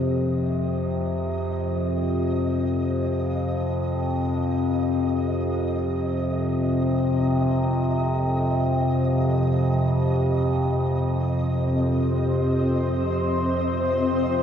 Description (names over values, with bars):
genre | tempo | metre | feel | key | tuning
dark ambient drone | free time | none | none | unclear | A4 = 442 Hz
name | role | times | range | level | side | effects
overtone-sweeping drone | drone | 0.0-14.4 s | F2 to C3 | -22 LUFS | equal | chorus, built-in reverb
flickering grainy texture | texture | 0.0-14.4 s | Eb5 | -36 LUFS | right 1 dB | built-in reverb
granular cloud pad | sustained chords | 11.7-14.4 s | C4 to C5 | -25 LUFS | left 2 dB | built-in reverb
room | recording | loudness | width
wet cathedral reverb, RT60 6.2 s | dark, warm production | -21 LUFS | side -8 dB against mid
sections
0.0-14.4 A section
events
fade-in on synth texture 0.0-14.4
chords
0.0 F5